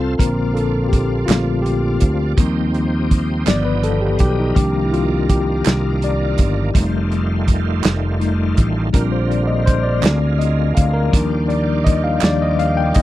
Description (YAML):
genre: slow gospel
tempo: 55 BPM (dotted quarters)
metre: 6/8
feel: straight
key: Bb major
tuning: A4 = 440 Hz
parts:
  - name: tine electric piano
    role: accompaniment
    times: 0.0-13.0 s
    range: D3 to G5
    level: -20 LUFS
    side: left 3 dB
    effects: medium stereo tremolo
  - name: bright tonewheel organ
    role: sustained chords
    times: 0.0-13.0 s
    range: D3 to A4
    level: -27 LUFS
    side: right 3 dB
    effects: slow rotary speaker, overdrive, chorus vibrato
  - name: fingered electric bass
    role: bass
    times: 0.0-13.0 s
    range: F1 to Eb2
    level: -19 LUFS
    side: equal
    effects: none
  - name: warm soul drum kit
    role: drums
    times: 0.2-13.0 s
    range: hi-hat, kick drum, snare drum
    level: -15 LUFS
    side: equal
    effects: none
  - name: group handclap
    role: percussion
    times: 1.3-12.6 s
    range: none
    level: -25 LUFS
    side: right 13 dB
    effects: none
room: little or no reverb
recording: none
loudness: -15 LUFS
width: side -15 dB against mid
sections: 0.2-13.0 A section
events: drum fill 0.0; tine electric piano solo 0.2-13.0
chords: 0.2 Bbmaj7; 2.4 Eb69; 3.5 G7b13; 4.6 Cm11; 6.8 F9; 8.9 Bb6; 10.0 Bb7/D; 11.1 Ebmaj9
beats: | 0.20 1.29 | 2.38 3.47 | 4.57 5.66 | 6.75 7.85 | 8.94 10.04 | 11.13 12.23